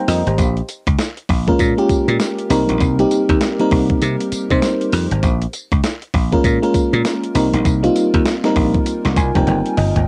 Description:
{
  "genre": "R&B, new jack swing",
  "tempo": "99 BPM",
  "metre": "4/4",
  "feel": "swing 61% on 16ths",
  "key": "unclear",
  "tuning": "A4 = 441 Hz",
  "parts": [
    { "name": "FM electric piano with soft pad layer", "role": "accompaniment", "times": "0.0-10.1 s", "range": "G3 to Bb5", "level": "-19 LUFS", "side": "equal", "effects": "chorus, tremolo, cassette tape" },
    { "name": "dry thumbed slap bass", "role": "bass", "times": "0.1-10.0 s", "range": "F1 to C3", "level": "-20 LUFS", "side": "equal", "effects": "none" },
    { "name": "crisp 8-bit digital drum machine", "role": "drums", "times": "0.1-10.1 s", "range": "hi-hat, kick drum, snare drum, tambourine, toms", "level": "-22 LUFS", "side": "equal", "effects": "cassette tape" }
  ],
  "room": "light reverb",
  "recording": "home recording on cassette",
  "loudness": "-17 LUFS",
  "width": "mono",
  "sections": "0.0-10.1 A section",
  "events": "FM electric piano fill 8.9-10.1; drum fill 9.5-10.1",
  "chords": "0.4 Bbm7; 2.5 Cm7; 5.2 Bbm7; 7.3 Cm7"
}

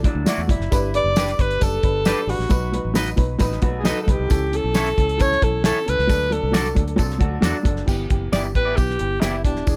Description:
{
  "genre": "uptempo 1960s-style soul",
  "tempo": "134 BPM",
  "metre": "4/4",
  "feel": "straight",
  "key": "G major",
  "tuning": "A4 = 439 Hz",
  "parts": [
    { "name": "dark upright piano", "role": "accompaniment", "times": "0.0-9.8 s", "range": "E3 to D5", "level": "-29 LUFS", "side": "equal", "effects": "none" },
    { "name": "fingered electric bass", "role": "bass", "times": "0.0-9.8 s", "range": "Eb1 to E2", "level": "-28 LUFS", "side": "equal", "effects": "none" },
    { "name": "cloth-damped thuddy drum kit", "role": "drums", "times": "0.0-9.8 s", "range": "crash cymbal, hi-hat, kick drum, snare drum", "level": "-23 LUFS", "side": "equal", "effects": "none" },
    { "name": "electric guitar through a small old amp", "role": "riff", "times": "0.1-4.3, 7.0-7.9 s", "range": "F#3 to A4", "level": "-34 LUFS", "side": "equal", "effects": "spring reverb" },
    { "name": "electric guitar at the edge of break-up", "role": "stabs", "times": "0.3-9.4 s", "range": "A3 to D#5", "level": "-28 LUFS", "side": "equal", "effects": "none" },
    { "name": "tambourine", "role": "percussion", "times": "0.3-9.8 s", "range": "none", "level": "-38 LUFS", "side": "equal", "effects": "none" },
    { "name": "breathy alto saxophone", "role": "melody", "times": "1.0-9.8 s", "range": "D4 to D5", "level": "-25 LUFS", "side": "equal", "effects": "tape echo" }
  ],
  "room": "light reverb",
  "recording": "none",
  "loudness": "-20 LUFS",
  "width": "mono",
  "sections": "0.0-7.9 A section; 7.9-9.8 B section",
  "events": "alto saxophone solo 7.9-9.8",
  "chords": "0.0 Dadd9; 0.7 G; 2.5 B; 4.3 A; 6.1 D; 7.9 G6"
}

